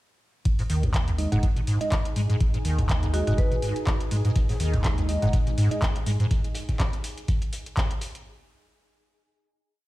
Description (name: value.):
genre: acid house.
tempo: 123 BPM.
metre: 4/4.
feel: swing 56% on 16ths.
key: unclear.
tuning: A4 = 440 Hz.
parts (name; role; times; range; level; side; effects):
saturated sub bass; bass; 0.5-6.2 s; F#1 to G#2; -26 LUFS; equal; sidechain pumping.
booming analog drum machine; drums; 0.5-8.2 s; handclaps, hi-hat; -34 LUFS; left 1 dB; none.
electronic kick drum; drums; 0.5-7.9 s; none; -25 LUFS; equal; none.
ethereal airy pad; texture; 1.6-6.3 s; D#4 to G#5; -38 LUFS; equal; ensemble chorus, built-in reverb, sidechain pumping.
acid bass, square; riff; 0.6-6.3 s; F#2 to G#3; -28 LUFS; equal; ensemble chorus, sidechain pumping, tape echo.
tine electric piano; stabs; 1.2-5.8 s; G#3 to F#5; -32 LUFS; right 3 dB; phaser, tape echo.
marimba with hard mallets; melody; 3.1-3.9 s; F#4 to B4; -34 LUFS; equal; tape echo.
dark analog pad; sustained chords; 4.6-6.3 s; G#3 to D#5; -36 LUFS; left 1 dB; chorus, phaser, vintage 12-bit sampler grit, sidechain pumping.
crunchy breakbeat drum kit; drums; 4.4-8.1 s; hi-hat, snare drum; -43 LUFS; equal; sidechain pumping on hats, high-pass filter on hats, high-pass filter on snare, high-pass filter on room.
room: little or no reverb.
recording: played on a big sound system in a bare room, large studio reverb.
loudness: -22 LUFS.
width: side -17 dB against mid.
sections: 0.5-8.3 groove.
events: none.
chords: 0.5 G#5.